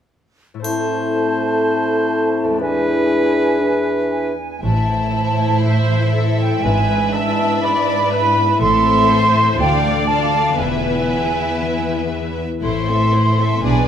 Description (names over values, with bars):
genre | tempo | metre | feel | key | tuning
classical, dramatic, fast romantic movement for symphony orchestra | 120 BPM | 4/4 | straight | A minor | A4 = 440 Hz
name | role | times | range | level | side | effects
concert harp | arpeggios | 0.5-13.9 s | E2 to C5 | -25 LUFS | left 9 dB | none
bright oboe | second line | 0.6-4.3 s | B4 to C5 | -25 LUFS | right 2 dB | none
bright small flute group | second line | 0.6-13.9 s | E5 to C6 | -20 LUFS | right 2 dB | none
warm clarinet | second line | 0.6-4.4 s | D4 to E4 | -24 LUFS | left 2 dB | none
mellow bassoon | accompaniment | 0.6-4.3 s | E3 to A3 | -22 LUFS | right 2 dB | none
triangle | percussion | 0.6-1.6 s | none | -32 LUFS | left 5 dB | none
warm French horn section | sustained chords | 0.7-4.4 s | C4 to A4 | -20 LUFS | left 2 dB | none
rich symphonic violin section | melody | 4.6-13.9 s | B4 to F5 | -28 LUFS | left 5 dB | none
rich symphonic violin section | second line | 4.6-13.9 s | A3 to C5 | -25 LUFS | left 3 dB | none
rich symphonic cello section | bass | 4.6-13.9 s | D2 to B2 | -20 LUFS | right 2 dB | none
rich symphonic double bass section | bass | 4.6-13.9 s | E1 to D2 | -23 LUFS | right 2 dB | none
clear symphonic viola section | accompaniment | 5.6-13.9 s | A4 to E5 | -24 LUFS | right 1 dB | none
room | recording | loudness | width
moderate concert hall reverb, RT60 2.4 s | none | -15 LUFS | side -9 dB against mid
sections
0.6-4.6 A section; 4.6-13.9 B section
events
none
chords
0.6 Am; 2.6 E7; 4.6 Am; 6.6 E7/G#; 8.6 Am; 9.6 Dm; 10.6 E; 12.6 Am